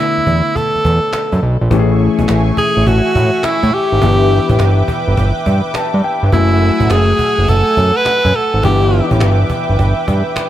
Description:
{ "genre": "R&B, new jack swing", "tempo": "104 BPM", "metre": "4/4", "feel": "swing 65% on 16ths", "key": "A major", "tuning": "A4 = 440 Hz", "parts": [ { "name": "clear tenor saxophone", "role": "melody", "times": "0.0-9.2 s", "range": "E4 to B4", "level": "-15 LUFS", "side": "equal", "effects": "ping-pong delay" }, { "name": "warm grand piano", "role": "accompaniment", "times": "0.0-10.5 s", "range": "D3 to A5", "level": "-20 LUFS", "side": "left 6 dB", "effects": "none" }, { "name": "fat analog bass", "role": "bass", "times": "0.2-10.2 s", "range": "F#1 to A2", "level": "-13 LUFS", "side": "right 1 dB", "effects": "none" }, { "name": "cajon", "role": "drums", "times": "0.2-10.5 s", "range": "none", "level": "-22 LUFS", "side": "right 1 dB", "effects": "none" }, { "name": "lush unison pad", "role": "sustained chords", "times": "1.7-10.5 s", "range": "A3 to E6", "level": "-21 LUFS", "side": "right 2 dB", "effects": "chorus" } ], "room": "studio ambience", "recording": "none", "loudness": "-11 LUFS", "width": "side -12 dB against mid", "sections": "0.0-1.7 A section; 1.7-10.5 B section", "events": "grand piano fill 5.5-6.3", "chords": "0.0 E7sus4; 1.7 Amaj7; 4.0 G6; 6.3 F#m9; 8.6 G6" }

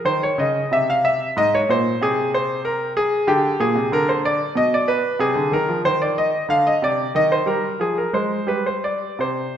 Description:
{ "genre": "classical, baroque-style suite movement for grand piano", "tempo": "93 BPM", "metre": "3/4", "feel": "rubato", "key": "C minor from 3.3 s", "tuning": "A4 = 440 Hz", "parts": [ { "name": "bright concert grand piano", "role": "solo", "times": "0.0-9.6 s", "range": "Ab2 to F5", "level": "-18 LUFS", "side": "equal", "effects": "none" } ], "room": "wet recital hall reverb, RT60 1.8 s", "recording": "minimal, uncompressed stereo recording", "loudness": "-18 LUFS", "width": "side -9 dB against mid", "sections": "0.0-9.6 A section", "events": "none", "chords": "0.0 Dbmaj7sus2; 0.7 N.C.; 1.4 Abadd9; 3.3 Bb13; 4.6 N.C.; 5.2 Cm9; 6.5 Cmadd9; 7.1 Eb6; 7.8 Fmadd11; 8.5 N.C." }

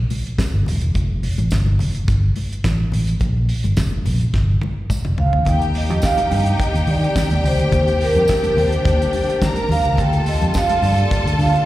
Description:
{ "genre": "disco", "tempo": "106 BPM", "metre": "4/4", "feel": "straight", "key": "unclear", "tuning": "A4 = 440 Hz", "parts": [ { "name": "fingered electric bass", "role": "bass", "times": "0.0-11.6 s", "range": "Eb1 to Eb3", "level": "-18 LUFS", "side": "equal", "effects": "none" }, { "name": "damped 70s drum kit", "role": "drums", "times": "0.1-11.7 s", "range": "hi-hat, kick drum, snare drum, toms", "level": "-23 LUFS", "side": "equal", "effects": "none" }, { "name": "congas", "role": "percussion", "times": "0.1-11.5 s", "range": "none", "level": "-30 LUFS", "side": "left 4 dB", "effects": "slapback echo" }, { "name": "tambourine", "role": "percussion", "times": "0.4-10.7 s", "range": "none", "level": "-36 LUFS", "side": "right 3 dB", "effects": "none" }, { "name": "vibraphone with soft mallets", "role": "melody", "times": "5.2-11.7 s", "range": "Bb4 to G5", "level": "-20 LUFS", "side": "right 1 dB", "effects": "slapback echo" }, { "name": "clear symphonic string section", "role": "second line", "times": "5.5-11.7 s", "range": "G4 to Bb5", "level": "-25 LUFS", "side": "equal", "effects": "slapback echo" }, { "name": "dark studio string section", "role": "sustained chords", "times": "5.5-11.7 s", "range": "C3 to F4", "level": "-27 LUFS", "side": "equal", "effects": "none" } ], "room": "light reverb", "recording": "live gig heard through the venue's PA, recital hall reverb", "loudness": "-16 LUFS", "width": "side -15 dB against mid", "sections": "0.0-5.5 A section; 5.5-11.7 B section", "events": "drum fill 4.3-5.5", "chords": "0.0 Cm (rootless); 1.0 F; 3.2 Bb5; 5.5 Eb6; 10.0 Bb6" }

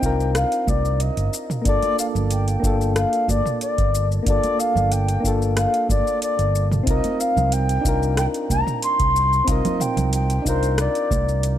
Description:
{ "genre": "sunset chillout", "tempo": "92 BPM", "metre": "4/4", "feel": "straight", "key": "unclear", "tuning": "A4 = 441 Hz", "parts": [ { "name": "mellow baroque flute", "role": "melody", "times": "0.0-11.6 s", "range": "C5 to C6", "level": "-23 LUFS", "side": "left 1 dB", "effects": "analog delay" }, { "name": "soft electric-piano-like synth keys", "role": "accompaniment", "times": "0.0-11.6 s", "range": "Bb3 to Bb4", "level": "-25 LUFS", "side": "moving between left 5 dB and right 6 dB", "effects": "chorus, auto-pan, analog delay" }, { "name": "mellow fretless electric bass", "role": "bass", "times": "0.0-11.6 s", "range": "G1 to C2", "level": "-22 LUFS", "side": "equal", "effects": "transformer saturation" }, { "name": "deep house drum kit", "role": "drums", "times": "0.0-11.6 s", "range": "hi-hat, rim click, shaker, toms", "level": "-28 LUFS", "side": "equal", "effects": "overdrive, small room reverb" }, { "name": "electronic kick drum", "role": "drums", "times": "0.0-11.2 s", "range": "none", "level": "-24 LUFS", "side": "equal", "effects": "overdrive, small room reverb" }, { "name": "congas", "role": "percussion", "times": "0.7-11.2 s", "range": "none", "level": "-30 LUFS", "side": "right 4 dB", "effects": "none" } ], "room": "digital ambience", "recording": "dry, gritty hardware recording, faint mains hum", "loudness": "-18 LUFS", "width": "side -11 dB against mid", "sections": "0.0-11.6 A section", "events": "none", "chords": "0.0 Cm11; 1.7 Gm9; 6.9 Cm11" }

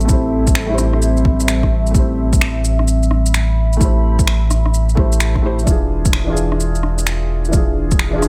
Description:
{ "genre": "future garage", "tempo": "129 BPM", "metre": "4/4", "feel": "swing 65% on 16ths", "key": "A minor", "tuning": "A4 = 440 Hz", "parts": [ { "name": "felt-muted upright piano", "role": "accompaniment", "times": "0.0-8.3 s", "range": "E3 to C5", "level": "-25 LUFS", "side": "equal", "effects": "sidechain pumping, digital delay" }, { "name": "warbly tape-like pad", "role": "sustained chords", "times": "0.0-8.3 s", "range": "G3 to B5", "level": "-26 LUFS", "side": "equal", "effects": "chorus, built-in reverb, sidechain pumping" }, { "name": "warm sub bass", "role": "bass", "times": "0.0-8.3 s", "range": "E1 to A1", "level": "-20 LUFS", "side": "equal", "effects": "sidechain pumping" }, { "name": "electronic shaker, finger snaps and rim click", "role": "drums", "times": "0.0-8.3 s", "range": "none", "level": "-25 LUFS", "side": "equal", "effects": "overdrive, studio reverb" }, { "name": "electronic kick drum", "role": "drums", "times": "0.1-8.0 s", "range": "none", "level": "-19 LUFS", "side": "equal", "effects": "overdrive, studio reverb" } ], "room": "light reverb", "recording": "none", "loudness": "-16 LUFS", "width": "mono", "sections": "0.0-8.3 A section", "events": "none", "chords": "0.0 Am7; 5.7 E7b9" }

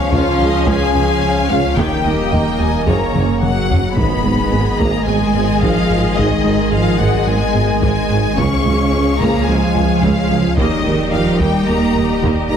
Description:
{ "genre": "cinematic, hybrid orchestral and electronic film score", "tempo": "109 BPM", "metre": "4/4", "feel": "straight", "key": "unclear", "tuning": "A4 = 440 Hz", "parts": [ { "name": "clear symphonic violin section", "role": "melody", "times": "0.0-12.6 s", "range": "C#5 to C#6", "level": "-23 LUFS", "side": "left 5 dB", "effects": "none" }, { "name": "clear symphonic violin section", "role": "second line", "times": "0.0-12.6 s", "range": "G4 to G#5", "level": "-25 LUFS", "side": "left 3 dB", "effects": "none" }, { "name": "rich symphonic viola section", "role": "accompaniment", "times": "0.0-12.6 s", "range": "C#3 to G#4", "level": "-25 LUFS", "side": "right 1 dB", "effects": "none" }, { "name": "glassy FM pad", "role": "sustained chords", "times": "0.0-12.6 s", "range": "D#3 to D#5", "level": "-23 LUFS", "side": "equal", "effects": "ensemble chorus, built-in reverb" }, { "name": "warm French horn section", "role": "sustained chords", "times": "0.0-12.6 s", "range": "D#3 to G#4", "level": "-26 LUFS", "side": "left 4 dB", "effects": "none" }, { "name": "warm trombone section", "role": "sustained chords", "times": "0.0-12.6 s", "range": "C#3 to C#4", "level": "-25 LUFS", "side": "right 2 dB", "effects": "none" }, { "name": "sub bass with octave", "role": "bass", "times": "0.0-12.6 s", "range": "D#1 to C#2", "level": "-24 LUFS", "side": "equal", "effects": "none" }, { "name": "thumb-piano-like synth pluck", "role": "arpeggios", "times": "0.1-12.6 s", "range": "C#3 to G#4", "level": "-26 LUFS", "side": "right 3 dB", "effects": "none" }, { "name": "round analog bass", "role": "riff", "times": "0.1-12.6 s", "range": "C#2 to G#3", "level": "-23 LUFS", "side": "right 1 dB", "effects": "none" }, { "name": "rich symphonic double bass section", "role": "bass", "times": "0.1-12.6 s", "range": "F#1 to D#2", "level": "-24 LUFS", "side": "right 2 dB", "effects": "none" }, { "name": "warm symphonic cello section", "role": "bass", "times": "0.1-12.6 s", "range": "C#2 to C#4", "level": "-21 LUFS", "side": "right 1 dB", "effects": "none" }, { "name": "warm tuba", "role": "bass", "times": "0.1-12.6 s", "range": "F#1 to D#2", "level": "-25 LUFS", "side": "right 4 dB", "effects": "none" }, { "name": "taiko ensemble", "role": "drums", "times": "0.1-12.6 s", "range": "none", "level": "-23 LUFS", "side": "left 1 dB", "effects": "none" }, { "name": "impact", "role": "sound effects", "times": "4.0-6.2 s", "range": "none", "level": "-26 LUFS", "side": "equal", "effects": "none" } ], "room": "moderate recital hall reverb, RT60 1.4 s", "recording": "heavily compressed radio sound", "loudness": "-13 LUFS", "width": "side -8 dB against mid", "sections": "0.0-4.0 A section; 4.0-12.6 B section", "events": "drum fill 3.1-4.0; impact 4.0-6.2", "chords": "0.0 C#; 1.8 D#; 2.9 F#add9; 4.0 G#m; 8.4 C#; 10.6 D#" }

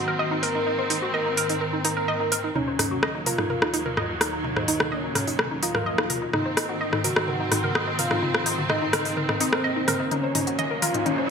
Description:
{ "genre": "melodic techno", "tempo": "127 BPM", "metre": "4/4", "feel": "straight", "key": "Eb dorian", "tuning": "A4 = 440 Hz", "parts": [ { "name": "wide unison lead", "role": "melody", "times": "0.0-11.3 s", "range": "C4 to Bb4", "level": "-28 LUFS", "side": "equal", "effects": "digital delay" }, { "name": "bright studio string section", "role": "sustained chords", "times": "0.0-11.3 s", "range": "Eb2 to C4", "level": "-30 LUFS", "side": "right 1 dB", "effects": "none" }, { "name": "analog pluck", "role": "arpeggios", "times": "0.0-11.3 s", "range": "Eb4 to Eb5", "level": "-28 LUFS", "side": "equal", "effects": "chorus, ping-pong delay" }, { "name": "analog drone", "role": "drone", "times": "0.0-11.3 s", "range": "Eb3 to Bb3", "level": "-39 LUFS", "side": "equal", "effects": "none" }, { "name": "techno drum kit", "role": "drums", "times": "0.4-11.2 s", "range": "hi-hat, rim click, toms", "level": "-25 LUFS", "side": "left 1 dB", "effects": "overdrive" }, { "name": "riser", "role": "sound effects", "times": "10.5-11.3 s", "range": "none", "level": "-33 LUFS", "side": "left 3 dB", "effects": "none" } ], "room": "wet plate reverb, RT60 1.4 s", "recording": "bright 1980s-style digital production, high-pass filter, low-pass filter", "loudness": "-22 LUFS", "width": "side -6 dB against mid", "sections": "0.0-2.6 A section; 2.6-11.3 B section", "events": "build-up 2.6-11.3; drum fill 2.6-11.3; riser 10.5-11.3", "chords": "0.0 Ab; 2.6 Ebm; 6.3 Ab; 10.1 Ebm" }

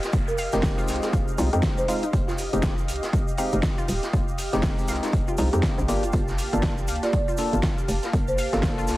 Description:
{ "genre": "deep house", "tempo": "120 BPM", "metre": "4/4", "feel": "swing 59% on 16ths", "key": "unclear", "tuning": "A4 = 439 Hz", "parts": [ { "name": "warm analog pad", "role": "sustained chords", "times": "0.0-9.0 s", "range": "Bb3 to A5", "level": "-33 LUFS", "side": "right 1 dB", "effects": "chorus, sidechain pumping" }, { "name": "deep house drum kit", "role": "drums", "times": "0.0-9.0 s", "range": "hi-hat, snare drum", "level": "-32 LUFS", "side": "equal", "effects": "overdrive, small room reverb" }, { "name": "raw garage drum kit", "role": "drums", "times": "0.0-9.0 s", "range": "hi-hat, snare drum", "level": "-37 LUFS", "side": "equal", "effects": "high-pass filter on hats, small room reverb, high-pass filter on snare, high-pass filter on room" }, { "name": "egg shaker", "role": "percussion", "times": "0.0-9.0 s", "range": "none", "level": "-41 LUFS", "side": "right 2 dB", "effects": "none" }, { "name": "downlifter", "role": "sound effects", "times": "0.0-2.1 s", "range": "none", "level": "-44 LUFS", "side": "equal", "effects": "none" }, { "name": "hollow knocking FM bass", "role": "bass", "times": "0.1-9.0 s", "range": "Eb1 to F2", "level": "-27 LUFS", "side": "equal", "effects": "sidechain pumping" }, { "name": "electronic kick drum", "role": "drums", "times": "0.1-8.8 s", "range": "none", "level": "-25 LUFS", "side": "equal", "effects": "small room reverb" }, { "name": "folk marimba with soft mallets", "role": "melody", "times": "0.3-2.5, 7.0-8.4 s", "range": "Ab4 to D5", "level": "-30 LUFS", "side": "right 2 dB", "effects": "analog delay" }, { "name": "warbly dusty pluck", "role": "arpeggios", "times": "0.4-8.8 s", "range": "Eb4 to F5", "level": "-35 LUFS", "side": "left 2 dB", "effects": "chorus, sidechain pumping, analog delay" }, { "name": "percussive organ stab", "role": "stabs", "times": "0.5-9.0 s", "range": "Ab3 to A4", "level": "-29 LUFS", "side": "left 1 dB", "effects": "chorus, sidechain pumping, analog delay" } ], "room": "studio reverb", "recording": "dense, heavily limited modern master, vinyl crackle", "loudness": "-22 LUFS", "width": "side -17 dB against mid", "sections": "0.0-9.0 A section", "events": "none", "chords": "0.0 Fm9; 5.9 Gm9" }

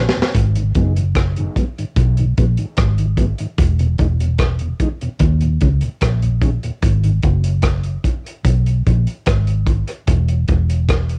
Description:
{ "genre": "dub reggae", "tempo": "74 BPM", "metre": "4/4", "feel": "straight", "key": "G# minor", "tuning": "A4 = 440 Hz", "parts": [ { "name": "mellow tonewheel organ", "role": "accompaniment", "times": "0.0-7.1 s", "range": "D#2 to D#4", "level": "-26 LUFS", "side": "equal", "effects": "slow rotary speaker, low-pass filter" }, { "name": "vintage muted fingered electric bass", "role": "bass", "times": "0.0-11.2 s", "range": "E1 to D#2", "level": "-18 LUFS", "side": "equal", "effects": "none" }, { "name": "crunchy breakbeat drum kit", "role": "drums", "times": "0.1-11.2 s", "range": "hi-hat, kick drum, rim click, snare drum", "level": "-20 LUFS", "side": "equal", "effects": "cassette tape" }, { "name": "clean electric guitar", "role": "accompaniment", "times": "0.8-0.9 s", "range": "F#3 to G#4", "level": "-30 LUFS", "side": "equal", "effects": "low-pass filter, dub echo" } ], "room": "little or no reverb", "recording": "home recording on cassette", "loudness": "-17 LUFS", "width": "mono", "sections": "0.3-11.2 A section", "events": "break 0.0-0.3; drum fill 0.0-0.3", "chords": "0.3 G#m7; 3.6 E5; 5.2 D#7(no3); 6.8 G#m7; 10.1 N.C." }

